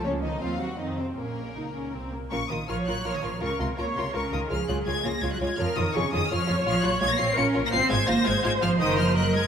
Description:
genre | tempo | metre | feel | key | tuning
quick classical-period movement for string orchestra | 166 BPM | 3/4 | rubato | Bb minor | A4 = 441 Hz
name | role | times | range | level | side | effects
clear studio violin section | melody | 0.0-9.5 s | Bb4 to Db7 | -30 LUFS | left 4 dB | none
rich studio violin section | second line | 0.0-9.5 s | Bb3 to F5 | -32 LUFS | left 2 dB | none
rich studio viola section | accompaniment | 0.0-9.5 s | F3 to Db5 | -30 LUFS | equal | none
rich studio cello section | bass | 0.0-9.5 s | Bb2 to Db4 | -29 LUFS | right 2 dB | none
rich studio double bass section | bass | 0.0-9.5 s | Gb1 to F2 | -31 LUFS | right 2 dB | none
room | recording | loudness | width
moderate concert hall reverb, RT60 2.4 s | none | -23 LUFS | side -8 dB against mid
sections
0.0-2.3 A section; 2.3-9.5 A section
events
none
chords
0.1 Bbm/Db; 0.4 Cdim/Eb; 0.8 F5; 1.2 Bbm; 3.4 Bbm/Db; 4.5 Db; 5.6 Db/F; 6.7 Bbm; 7.7 Fm/Ab; 8.8 Ebm/Gb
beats
| 0.05 0.41 0.79 | 1.17 1.56 1.94 | 2.32 2.69 3.05 | 3.42 3.78 4.15 | 4.51 4.87 5.23 | 5.59 5.95 6.31 | 6.66 7.01 7.37 | 7.73 8.09 8.45 | 8.80 9.17

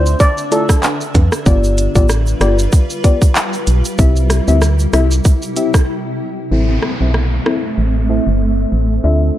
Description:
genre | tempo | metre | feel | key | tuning
dancehall | 95 BPM | 4/4 | swing 56% on 16ths | A minor | A4 = 436 Hz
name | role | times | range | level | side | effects
steel pan | melody | 0.0-0.6 s | A4 to D5 | -18 LUFS | right 1 dB | tape echo
deep mellow chord stab | accompaniment | 0.0-9.4 s | A3 to E5 | -20 LUFS | left 3 dB | chorus, low-pass filter
granular cloud pad | sustained chords | 0.0-9.4 s | C3 to E5 | -22 LUFS | right 1 dB | built-in reverb, sidechain pumping, low-pass filter
organ-like FM bass | bass | 0.0-9.3 s | G1 to F2 | -14 LUFS | equal | none
island pop drum kit | drums | 0.1-7.6 s | handclaps, hi-hat, kick drum, rim click, shaker | -14 LUFS | equal | overdrive
egg shaker and timbales | percussion | 0.1-5.9 s | none | -29 LUFS | right 8 dB | none
downlifter | sound effects | 6.5-9.4 s | none | -26 LUFS | equal | none
room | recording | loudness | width
light reverb, digital ambience | dark, warm production | -12 LUFS | side -13 dB against mid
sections
0.0-6.5 A section; 6.5-9.4 B section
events
break 5.9-6.5; filter sweep 6.5-9.4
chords
0.0 Dmadd9; 1.5 G7; 4.0 C; 6.5 Am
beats
0.20 0.83 | 1.46 2.09 2.72 3.36 | 3.99 4.62 5.25 5.88 | 6.51 7.14 7.78 8.41 | 9.04

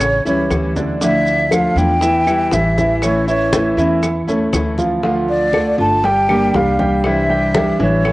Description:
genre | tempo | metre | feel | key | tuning
latin, Cuban son and guajira | 119 BPM | 4/4 | straight | D harmonic minor | A4 = 441 Hz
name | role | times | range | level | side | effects
breathy concert flute | melody | 0.0-8.1 s | C#5 to A5 | -17 LUFS | equal | none
nylon-string guitar | accompaniment | 0.0-8.1 s | C3 to G4 | -20 LUFS | left 1 dB | cassette tape
warm baby grand piano | arpeggios | 0.0-8.1 s | C#3 to G5 | -19 LUFS | right 2 dB | cassette tape
upright bass | bass | 0.0-8.1 s | G1 to E2 | -22 LUFS | equal | none
bongos | percussion | 0.0-8.1 s | none | -24 LUFS | left 3 dB | none
claves | percussion | 0.0-8.1 s | none | -30 LUFS | left 2 dB | none
congas | percussion | 0.0-8.1 s | none | -24 LUFS | left 1 dB | none
maracas | percussion | 0.0-5.0 s | none | -29 LUFS | right 3 dB | none
room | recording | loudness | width
wet spring reverb, RT60 1.5 s | home recording on cassette, nothing above 10.4 kHz | -13 LUFS | side -18 dB against mid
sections
0.0-5.0 A section; 5.0-8.1 A section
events
none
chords
0.0 A7; 1.0 Dmadd9; 2.0 Emadd11; 3.0 A; 5.0 Dm; 6.0 Gm; 7.0 Cadd9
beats
0.01 0.51 | 1.01 1.52 2.02 2.52 | 3.02 3.53 4.03 4.53 | 5.04 5.54 6.04 6.54 | 7.05 7.55 8.05

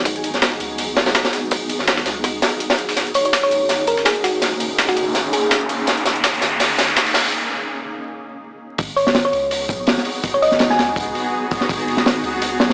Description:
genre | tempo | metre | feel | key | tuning
drum and bass, jungle | 165 BPM | 4/4 | swing 55% on 16ths | G# minor | A4 = 439 Hz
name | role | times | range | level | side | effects
granular cloud pad | sustained chords | 0.0-12.7 s | A#3 to G#4 | -28 LUFS | equal | built-in reverb
soft dub sub bass | bass | 0.1-12.7 s | D#1 to C#2 | -42 LUFS | equal | tube saturation
breakbeat sampler-style drum kit | drums | 0.1-7.2 s | hi-hat, snare drum | -24 LUFS | equal | high-pass filter on hats, high-pass filter on snare
crunchy breakbeat drum kit | drums | 0.1-12.7 s | hi-hat, kick drum, snare drum | -22 LUFS | equal | high-pass filter on kick, high-pass filter on hats, high-pass filter on snare, high-pass filter on room
riser | sound effects | 4.6-7.3 s | none | -26 LUFS | equal | none
thumb-piano-like synth pluck | melody | 3.1-5.8, 9.0-10.8 s | F#4 to G#5 | -23 LUFS | equal | chorus, dub echo
room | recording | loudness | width
light reverb, studio reverb | dry, gritty hardware recording, vinyl crackle, small speaker sound | -19 LUFS | mono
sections
0.0-8.8 A section; 8.8-12.7 B section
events
build-up 0.0-8.8; filter sweep on ambient pad 0.0-8.8; drum fill 3.0-7.3; riser 4.6-7.3; break 7.3-8.8; drop 8.8-12.7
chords
0.0 G#m7; 3.0 D#7sus4; 8.8 G#m7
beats
| 0.06 0.42 0.79 1.15 | 1.51 1.88 2.24 2.60 | 2.97 3.33 3.69 4.06 | 4.42 4.79 5.15 5.51 | 5.88 6.24 6.60 6.97 | 7.33 7.70 8.06 8.42 | 8.79 9.15 9.51 9.88 | 10.24 10.60 10.97 11.33 | 11.70 12.06 12.42

